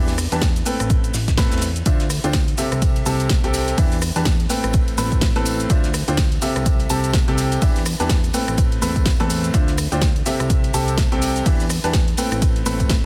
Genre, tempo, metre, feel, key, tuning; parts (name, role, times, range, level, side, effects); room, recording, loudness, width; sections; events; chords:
piano house; 125 BPM; 4/4; swing 58% on 16ths; A4 = 442 Hz
bright upright piano; riff; 0.0-12.9 s; A2 to B5; -25 LUFS; equal; sidechain pumping, delay
fat analog bass; bass; 0.0-13.0 s; A1 to E2; -27 LUFS; equal; sidechain pumping
damped 70s drum kit; drums; 0.1-13.0 s; hi-hat, ride cymbal, snare drum; -38 LUFS; equal
house drum kit; drums; 0.1-13.0 s; hi-hat, rim click, shaker, snare drum; -28 LUFS; equal; soft clipping on snare
electronic kick drum; drums; 0.4-13.0 s; -21 LUFS; equal
tambourine; percussion; 1.9-13.0 s; -39 LUFS; equal
little or no reverb; dense, heavily limited modern master; -19 LUFS; mono
0.0-13.1 A section
0.0 Em7; 0.7 Am9; 1.9 Dm9; 2.8 C6; 3.8 Em7; 4.5 Am9; 5.7 Dm9; 6.7 C6; 7.6 Em7; 8.3 Am9; 9.5 Dm9; 10.5 C6; 11.5 Em7; 12.2 Am9